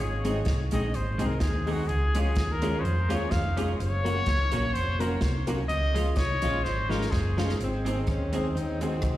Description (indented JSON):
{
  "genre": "ska",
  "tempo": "126 BPM",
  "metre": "4/4",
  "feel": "swing 54% on 8ths",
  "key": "Ab mixolydian",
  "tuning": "A4 = 440 Hz",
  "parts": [
    { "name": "warm trumpet", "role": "melody", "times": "0.0-7.6 s", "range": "Gb4 to F5", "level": "-32 LUFS", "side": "left 2 dB", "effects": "dub echo, slapback echo" },
    { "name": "hollow-body short-scale fingered electric bass", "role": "bass", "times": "0.0-9.2 s", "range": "F1 to F2", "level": "-28 LUFS", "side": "equal", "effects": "none" },
    { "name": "clean electric guitar", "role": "accompaniment", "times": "0.2-9.1 s", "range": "F3 to Ab4", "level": "-34 LUFS", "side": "right 3 dB", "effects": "lush chorus, slapback echo" },
    { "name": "tack piano", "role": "stabs", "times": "0.2-8.9 s", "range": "Ab3 to Bb4", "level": "-34 LUFS", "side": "left 2 dB", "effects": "slapback echo" },
    { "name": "swinging big-band drum kit", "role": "drums", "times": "0.2-9.1 s", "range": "hi-hat, kick drum, rim click, snare drum", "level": "-32 LUFS", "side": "equal", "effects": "none" },
    { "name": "warm horn section", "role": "melody", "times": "7.6-9.2 s", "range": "Eb3 to Gb4", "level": "-32 LUFS", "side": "left 1 dB", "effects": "dub echo" }
  ],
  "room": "light reverb, small room ambience",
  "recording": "live gig heard through the venue's PA, recital hall reverb",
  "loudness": "-24 LUFS",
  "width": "side -14 dB against mid",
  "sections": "0.0-7.6 A section; 7.6-9.2 B section",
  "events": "trumpet solo 0.0-7.6; drum fill 6.7-7.6",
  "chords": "0.0 Ab; 1.9 Db; 3.8 Gb; 5.7 Db; 7.6 Ab",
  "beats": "0.47 0.94 1.42 | 1.90 2.37 2.85 3.32 | 3.80 4.27 4.75 5.22 | 5.70 6.17 6.65 7.12 | 7.60 8.08 8.55 9.03"
}